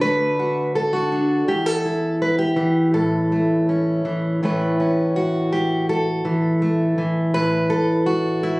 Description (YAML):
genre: folk, solo fingerstyle acoustic guitar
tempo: 82 BPM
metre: 4/4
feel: straight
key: A mixolydian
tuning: A4 = 440 Hz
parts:
  - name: fingerpicked plugged-in steel-string acoustic guitar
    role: solo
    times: 0.0-8.6 s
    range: E2 to B4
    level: -18 LUFS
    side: equal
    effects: none
room: light reverb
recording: recorded on a phone in the room, studio reverb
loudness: -18 LUFS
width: side -23 dB against mid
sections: 0.0-4.4 A section; 4.4-8.6 B section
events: none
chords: 0.0 D; 1.5 N.C.; 2.9 A; 4.4 Aadd9